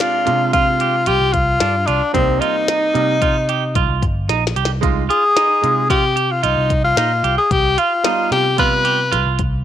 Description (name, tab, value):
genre	progressive instrumental, band music in an uneven meter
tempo	112 BPM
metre	5/4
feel	straight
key	C minor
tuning	A4 = 437 Hz
part	clear tenor saxophone	melody	0.0-9.4 s	C4 to B4	-16 LUFS	left 2 dB	none
part	bright concert grand piano	accompaniment	0.0-9.0 s	C3 to F4	-24 LUFS	right 12 dB	none
part	semi-hollow electric guitar	arpeggios	0.0-9.4 s	D4 to G4	-23 LUFS	right 12 dB	none
part	glitchy drum kit	drums	0.0-9.5 s	hi-hat, kick drum, snare drum	-22 LUFS	left 2 dB	none
part	picked electric bass	bass	0.3-9.6 s	G1 to C3	-21 LUFS	equal	none
room	light reverb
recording	1960s-style stereo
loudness	-14 LUFS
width	side -10 dB against mid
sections	0.0-9.6 A section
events	drum fill 4.3-4.8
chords	0.0 Dm7b5/C; 2.1 Cm7; 4.8 Fm7/C; 7.5 G7/C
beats	0.00 0.53 1.07 1.61 | 2.14 2.68 3.21 3.75 4.29 | 4.82 5.36 5.90 6.44 6.97 | 7.51 8.05 8.59 9.13